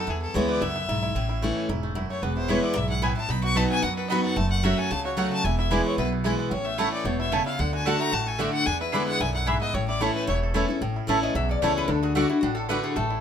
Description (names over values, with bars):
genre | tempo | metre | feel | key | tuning
bluegrass | 223 BPM | 4/4 | straight | A major | A4 = 442 Hz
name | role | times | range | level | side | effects
bluegrass banjo | melody | 0.0-13.2 s | A3 to A4 | -34 LUFS | right 4 dB | none
clear fiddle | melody | 0.0-10.4 s | G#4 to C#6 | -29 LUFS | left 3 dB | none
picked steel-string acoustic guitar | accompaniment | 0.0-13.2 s | E2 to F#4 | -26 LUFS | left 1 dB | none
upright bass | bass | 0.1-13.2 s | E1 to F#2 | -29 LUFS | right 1 dB | none
mandolin | stabs | 2.5-12.8 s | A3 to B5 | -29 LUFS | right 4 dB | none
lap resonator guitar | second line | 11.2-13.2 s | E4 to E5 | -29 LUFS | left 4 dB | none
room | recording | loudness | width
light reverb | minimal, uncompressed stereo recording | -22 LUFS | side -8 dB against mid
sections
0.0-10.8 A section; 10.8-13.2 B section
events
resonator guitar played with a steel bar solo 10.8-13.2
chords
0.1 E; 1.2 A; 2.2 E; 3.3 B; 4.4 F#m; 5.4 E; 6.5 A; 7.6 D; 8.7 E7; 9.7 A; 11.9 D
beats
| 0.09 0.35 0.62 0.89 | 1.16 1.42 1.69 1.96 | 2.23 2.49 2.76 3.03 | 3.30 3.57 3.83 4.10 | 4.37 4.64 4.91 5.17 | 5.44 5.71 5.98 6.25 | 6.52 6.79 7.05 7.32 | 7.59 7.86 8.13 8.40 | 8.67 8.94 9.20 9.47 | 9.74 10.01 10.28 10.55 | 10.82 11.08 11.35 11.62 | 11.89 12.16 12.43 12.70 | 12.96